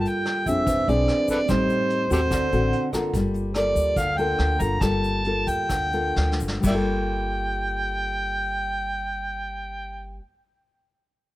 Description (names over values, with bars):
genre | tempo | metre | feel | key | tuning
bossa nova | 124-146 BPM | 4/4 | straight | G minor | A4 = 441 Hz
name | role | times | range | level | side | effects
overdriven harmonica | melody | 0.0-10.2 s | G4 to Bb5 | -25 LUFS | right 1 dB | none
nylon-string guitar | accompaniment | 0.0-10.3 s | A2 to A4 | -26 LUFS | left 2 dB | none
tine electric piano | accompaniment | 0.0-3.2 s | C4 to Bb5 | -31 LUFS | right 4 dB | medium stereo tremolo
upright bass | bass | 0.0-10.2 s | E1 to Eb2 | -28 LUFS | equal | none
vintage brush drum kit | drums | 0.1-6.8 s | crash cymbal, hi-hat, kick drum, rim click, snare drum | -31 LUFS | equal | none
egg shaker | percussion | 0.1-6.8 s | none | -41 LUFS | left 9 dB | none
room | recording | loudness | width
light reverb | none | -21 LUFS | side -16 dB against mid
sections
0.0-3.1 A section; 3.1-6.6 B section; 6.6-10.5 C section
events
tine electric piano fill 2.5-3.1; slowing down 3.1-6.6; drum fill 6.2-6.6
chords
0.0 Gm9; 0.7 E7b13; 1.5 Am7b5; 2.3 D7; 3.1 Gm9